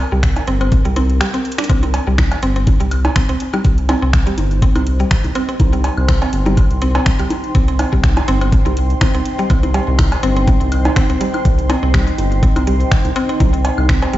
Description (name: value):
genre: minimal techno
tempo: 123 BPM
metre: 4/4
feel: swing 55% on 16ths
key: C minor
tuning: A4 = 438 Hz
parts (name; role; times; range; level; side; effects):
- round analog bass; bass; 0.0-14.2 s; G1 to C2; -17 LUFS; equal; sidechain pumping
- bubbling stepped-filter texture; texture; 0.0-1.7 s; Bb4; -34 LUFS; right 2 dB; chorus, built-in reverb, sidechain pumping
- mallet-like synth pluck; riff; 0.1-14.2 s; G3 to D4; -21 LUFS; equal; chorus, sidechain pumping, ping-pong delay
- electronic kick drum; drums; 0.2-14.0 s; none; -13 LUFS; equal; none
- garage drum kit; drums; 0.2-14.2 s; finger snaps, hi-hat; -26 LUFS; equal; none
- cowbell, bongos and woodblock; percussion; 0.4-14.1 s; none; -23 LUFS; right 1 dB; overdrive, ping-pong delay
- deep dark ambient pad; texture; 3.5-14.2 s; Eb4 to C6; -24 LUFS; equal; chorus, built-in reverb, sidechain pumping
room: light reverb, digital ambience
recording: played on a big sound system in a bare room, stone room reverb, nothing above 7.7 kHz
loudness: -13 LUFS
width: side -15 dB against mid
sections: 0.0-1.7 A section; 1.7-14.2 B section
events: break 1.2-1.7; drum fill 1.5; drop 1.7-14.2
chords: 0.0 C5; 1.7 Cm